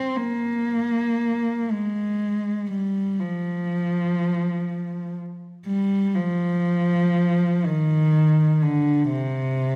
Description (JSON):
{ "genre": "classical, free, expressive piece for unaccompanied cello", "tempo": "free time", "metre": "none", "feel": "none", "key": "C minor", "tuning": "A4 = 440 Hz", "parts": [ { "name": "dark cello", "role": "solo", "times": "0.0-9.8 s", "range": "C3 to C4", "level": "-23 LUFS", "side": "equal", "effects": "none" } ], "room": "wet recital hall reverb, RT60 1.5 s", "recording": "vinyl crackle", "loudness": "-23 LUFS", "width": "mono", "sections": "0.0-9.8 A section", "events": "none", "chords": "none" }